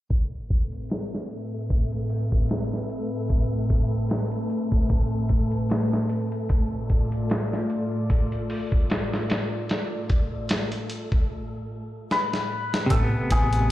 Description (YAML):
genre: trip hop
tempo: 75 BPM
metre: 4/4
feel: swing 55% on 16ths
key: A minor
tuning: A4 = 440 Hz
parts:
  - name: warbly tape-like pad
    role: sustained chords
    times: 0.4-12.9 s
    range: A2 to D5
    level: -28 LUFS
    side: equal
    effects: chorus, built-in reverb
  - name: dusty soul sampler-style drum kit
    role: drums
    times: 0.1-13.7 s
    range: hi-hat, kick drum, snare drum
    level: -24 LUFS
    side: equal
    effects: none
  - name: wind-like tuned noise texture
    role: texture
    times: 0.7-13.7 s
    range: E3 to E5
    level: -37 LUFS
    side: equal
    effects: built-in reverb
  - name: hammered dulcimer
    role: melody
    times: 12.1-13.7 s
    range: G#4 to B4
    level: -26 LUFS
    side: left 3 dB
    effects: none
  - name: clean electric guitar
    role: accompaniment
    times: 12.9-13.7 s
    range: C3 to B3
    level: -25 LUFS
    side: equal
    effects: tremolo
  - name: upright bass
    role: bass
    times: 12.9-13.7 s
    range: A1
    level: -23 LUFS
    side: equal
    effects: none
room: little or no reverb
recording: played on a big sound system in a bare room, stone room reverb, low-pass filter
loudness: -23 LUFS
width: side -15 dB against mid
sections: 0.1-12.9 A section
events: filter sweep 0.1-12.9; drum fill 12.1-12.9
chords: 0.1 Amadd9; 6.5 Dm/A; 12.9 Amadd9